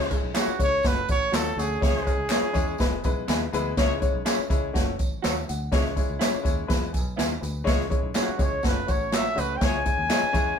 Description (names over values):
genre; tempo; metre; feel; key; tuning
uptempo 1960s-style soul; 123 BPM; 4/4; straight; C# minor; A4 = 441 Hz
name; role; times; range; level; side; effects
mellow horn section; second line; 0.0-9.8 s; E4 to C#5; -32 LUFS; equal; none
warm baby grand piano; accompaniment; 0.0-10.5 s; G#3 to G#5; -29 LUFS; left 5 dB; none
fingered electric bass; bass; 0.0-10.5 s; E1 to E2; -33 LUFS; equal; none
swinging big-band drum kit; drums; 0.0-10.5 s; hi-hat, kick drum, snare drum; -25 LUFS; equal; none
tambourine and handclaps; percussion; 0.1-10.5 s; none; -36 LUFS; equal; none
electric guitar through a small old amp; stabs; 0.3-10.2 s; B3 to C#5; -30 LUFS; right 3 dB; vibrato effect
clear trumpet; melody; 0.4-3.3, 8.2-10.6 s; F#4 to G#5; -27 LUFS; right 1 dB; none
room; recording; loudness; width
wet studio reverb, RT60 0.6 s; band playing live in one room; -22 LUFS; side -7 dB against mid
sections
0.0-10.6 A section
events
none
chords
0.0 C#m; 0.8 F#m; 1.8 C#m; 2.8 E; 3.8 C#m; 4.8 F#m; 5.7 C#m; 6.7 E; 7.7 C#m; 8.6 F#m; 9.6 C#m